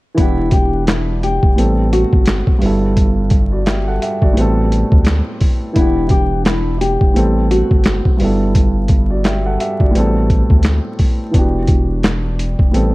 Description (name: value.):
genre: hip hop, boom-bap hip-hop.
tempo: 86 BPM.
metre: 4/4.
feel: swing 59% on 16ths.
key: A dorian.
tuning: A4 = 441 Hz.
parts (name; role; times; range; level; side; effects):
dark baby grand piano; accompaniment; 0.1-12.9 s; G2 to F#5; -18 LUFS; right 1 dB; cassette tape, high-pass filter, low-pass filter.
nylon-string guitar; melody; 0.2-8.5 s; E4 to G4; -19 LUFS; left 1 dB; high-pass filter, low-pass filter, slapback echo.
saturated sub bass; bass; 0.2-12.9 s; E1 to D2; -17 LUFS; equal; none.
boom bap sampler-style drum kit; drums; 0.2-12.9 s; handclaps, hi-hat, kick drum, snare drum; -14 LUFS; equal; none.
room: little or no reverb.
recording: dark, warm production, vinyl crackle.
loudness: -12 LUFS.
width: side -20 dB against mid.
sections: 0.2-12.9 A section.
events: none.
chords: 0.2 Em7; 1.6 Am7; 2.6 G6; 4.4 Am7; 5.8 Em7; 7.2 Am7; 8.2 G6; 9.9 Am7; 11.3 Em7.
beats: | 0.18 0.88 1.57 2.27 | 2.97 3.67 4.37 5.06 | 5.76 6.46 7.16 7.85 | 8.55 9.25 9.95 10.64 | 11.34 12.04 12.74.